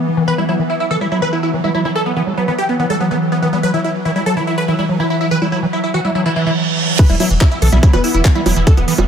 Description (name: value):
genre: psychedelic trance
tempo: 143 BPM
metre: 4/4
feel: straight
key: E minor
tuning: A4 = 438 Hz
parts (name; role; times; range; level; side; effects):
- evolving wavetable pad; sustained chords; 0.0-9.1 s; E3 to B3; -20 LUFS; right 1 dB; ensemble chorus, built-in reverb, sidechain pumping
- overdriven acid bass; riff; 0.0-9.0 s; D#3 to G3; -20 LUFS; moving between left 5 dB and right 5 dB; auto-pan, sidechain pumping, dub echo
- supersaw stab; melody; 0.3-8.9 s; B3 to B4; -19 LUFS; equal; phaser, sidechain pumping, dub echo
- reverse cymbal; sound effects; 6.3-7.0 s; none; -20 LUFS; right 7 dB; none
- electronic kick drum; drums; 7.0-8.8 s; none; -11 LUFS; equal; none
- garage drum kit; drums; 7.0-9.1 s; bongos, crash cymbal, handclaps, hi-hat; -20 LUFS; right 4 dB; none
- round analog bass; bass; 7.1-9.0 s; E1 to B1; -15 LUFS; equal; none
room: light reverb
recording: none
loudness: -13 LUFS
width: side -8 dB against mid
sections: 0.0-7.0 A section; 7.0-9.1 B section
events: reverse cymbal 6.3-7.0; drop 7.0-9.1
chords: 0.0 E5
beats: | 0.28 0.70 1.12 1.54 | 1.96 2.38 2.79 3.21 | 3.63 4.05 4.47 4.89 | 5.31 5.73 6.15 6.57 | 6.99 7.41 7.83 8.25 | 8.67